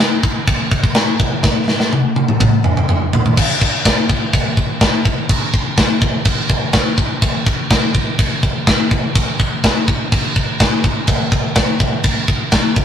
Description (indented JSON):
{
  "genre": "metal",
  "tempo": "125 BPM",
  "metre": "4/4",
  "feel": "straight",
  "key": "none",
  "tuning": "none",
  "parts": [
    { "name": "tight metal drum kit", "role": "drums", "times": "0.2-12.8 s", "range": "crash cymbal, kick drum, snare drum, toms", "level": "-13 LUFS", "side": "equal", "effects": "none" }
  ],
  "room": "light reverb",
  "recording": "rough rehearsal-room recording, lossy compression artefacts",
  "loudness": "-13 LUFS",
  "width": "side -8 dB against mid",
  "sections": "0.0-3.4 A section; 3.4-12.8 B section",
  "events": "drum fill 1.4-3.4",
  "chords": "none",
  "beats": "0.01 0.49 0.97 | 1.45 1.93 2.41 2.89 | 3.37 3.85 4.33 4.82 | 5.30 5.78 6.26 6.74 | 7.22 7.70 8.19 8.67 | 9.15 9.63 10.11 10.59 | 11.08 11.56 12.04 12.52"
}